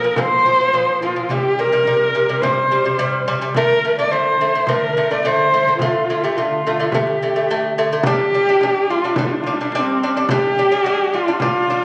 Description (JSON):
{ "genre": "mongolian traditional, Mongolian folk", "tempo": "107 BPM", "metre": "4/4", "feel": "straight", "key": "G minor", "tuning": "A4 = 444 Hz", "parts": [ { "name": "dark horsehead fiddle", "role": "melody", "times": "0.0-11.8 s", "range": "C4 to D5", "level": "-19 LUFS", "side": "equal", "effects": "none" }, { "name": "lute", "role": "arpeggios", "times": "0.0-11.8 s", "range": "Bb2 to D4", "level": "-23 LUFS", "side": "equal", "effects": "none" }, { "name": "frame drum", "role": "percussion", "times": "0.2-11.8 s", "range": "none", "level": "-28 LUFS", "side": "equal", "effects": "none" } ], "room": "moderate recital hall reverb, RT60 1.4 s", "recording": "recorded on a phone in the room, studio reverb, compression", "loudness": "-17 LUFS", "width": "mono", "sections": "0.0-8.1 A section; 8.1-11.8 B section", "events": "none", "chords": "0.0 Bb5; 1.3 C5; 3.6 Dm; 8.1 G5" }